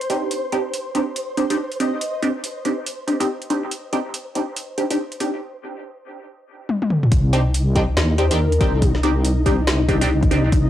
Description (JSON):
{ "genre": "deep dubstep", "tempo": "141 BPM", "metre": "4/4", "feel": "swing 60% on 16ths, half-time", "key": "C minor", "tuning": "A4 = 439 Hz", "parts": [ { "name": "garage drum kit", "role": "drums", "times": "0.0-10.6 s", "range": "hi-hat, snare drum, toms", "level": "-24 LUFS", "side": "left 1 dB", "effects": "overdrive, studio reverb, cassette tape" }, { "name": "flickering grainy texture", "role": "texture", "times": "0.0-10.7 s", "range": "Eb4 to C5", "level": "-28 LUFS", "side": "left 1 dB", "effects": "built-in reverb, cassette tape" }, { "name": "filtered dub chord stab", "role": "stabs", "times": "0.1-10.4 s", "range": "C4 to G4", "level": "-22 LUFS", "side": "right 1 dB", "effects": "phaser, lush chorus, cassette tape, dub echo" }, { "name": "breathy flute-like synth lead", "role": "melody", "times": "1.4-2.1, 8.2-8.9 s", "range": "Bb4 to Eb5", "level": "-30 LUFS", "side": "left 2 dB", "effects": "phaser, ensemble chorus, cassette tape, dub echo" }, { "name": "deep soft wobble bass", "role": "bass", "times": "7.1-10.7 s", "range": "C2 to Eb2", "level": "-18 LUFS", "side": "equal", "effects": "chorus" }, { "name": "electronic kick drum", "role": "drums", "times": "7.1-10.6 s", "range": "none", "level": "-20 LUFS", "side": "equal", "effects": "overdrive, studio reverb, cassette tape" } ], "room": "light reverb", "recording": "home recording on cassette", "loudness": "-18 LUFS", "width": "side -12 dB against mid", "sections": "0.0-7.1 A section; 7.1-10.7 B section", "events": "drum fill 6.7-7.1; drop 7.1-10.7", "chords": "0.0 Cmadd9" }